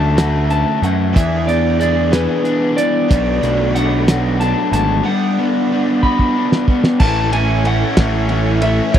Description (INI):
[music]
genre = indie rock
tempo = 62 BPM (dotted quarters)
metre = 6/8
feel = straight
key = A major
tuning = A4 = 440 Hz
[part]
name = electric guitar through a small old amp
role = melody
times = 0.0-9.0 s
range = B4 to B5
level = -20 LUFS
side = left 1 dB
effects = slapback echo
[part]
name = raw garage guitar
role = riff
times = 0.0-9.0 s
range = A2 to G#4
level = -20 LUFS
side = left 6 dB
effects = overdrive
[part]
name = raw garage guitar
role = riff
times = 0.0-9.0 s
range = E3 to G#4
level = -20 LUFS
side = right 6 dB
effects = overdrive, wide subtle chorus, slapback echo
[part]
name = fuzz picked electric bass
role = bass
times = 0.0-9.0 s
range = G#1 to F#2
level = -18 LUFS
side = right 1 dB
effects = overdrive
[part]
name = cloth-damped thuddy drum kit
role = drums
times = 0.2-9.0 s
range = crash cymbal, hi-hat, kick drum, ride cymbal, snare drum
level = -15 LUFS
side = right 1 dB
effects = none
[part]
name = soft string machine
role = sustained chords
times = 3.1-9.0 s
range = A4 to C#6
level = -32 LUFS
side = right 1 dB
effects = none
[sound]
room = little or no reverb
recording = dry, close 1970s-style studio recording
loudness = -13 LUFS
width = side -10 dB against mid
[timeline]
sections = 0.0-7.0 A section; 7.0-9.0 B section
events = drum fill 6.0-7.0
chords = 0.0 Dmaj7; 1.2 E7; 3.1 Bm7; 5.1 Gmaj7; 7.0 A